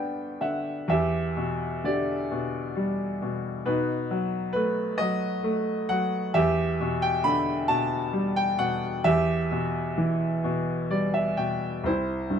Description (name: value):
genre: classical, lyrical solo piano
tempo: 44 BPM (dotted quarters)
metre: 6/8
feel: rubato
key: E minor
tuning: A4 = 440 Hz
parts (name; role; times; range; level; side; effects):
- bright baby grand piano; solo; 0.0-12.4 s; C2 to B5; -24 LUFS; equal; none
room: light reverb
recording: dark, warm production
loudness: -24 LUFS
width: side -8 dB against mid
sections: 0.9-11.8 A section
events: grand piano fill 0.0-0.9, 10.4-11.8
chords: 0.0 G; 0.9 Em7; 3.7 B7; 6.3 Em7; 9.1 Em; 11.8 C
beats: | 0.90 2.31 | 3.66 4.99 | 6.34 7.69 | 9.05 10.45 | 11.85